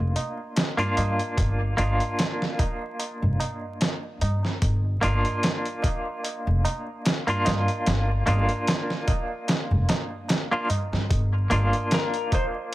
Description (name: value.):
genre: trip hop.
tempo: 74 BPM.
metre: 4/4.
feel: swing 55% on 16ths.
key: G minor.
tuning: A4 = 441 Hz.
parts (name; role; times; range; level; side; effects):
semi-hollow electric guitar; accompaniment; 0.0-12.7 s; Bb3 to F4; -28 LUFS; equal; tremolo, tape echo.
upright bass; bass; 0.0-11.7 s; F1 to G2; -24 LUFS; equal; none.
dusty soul sampler-style drum kit; drums; 0.2-12.5 s; hi-hat, kick drum, snare drum; -26 LUFS; equal; overdrive.
tabla; percussion; 0.2-12.7 s; none; -32 LUFS; right 1 dB; none.
clean lap steel guitar; melody; 11.9-12.5 s; Bb4 to C5; -28 LUFS; left 4 dB; none.
room: little or no reverb.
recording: vinyl crackle.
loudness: -22 LUFS.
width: side -16 dB against mid.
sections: 0.0-12.7 A section.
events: none.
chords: 0.0 Gm7.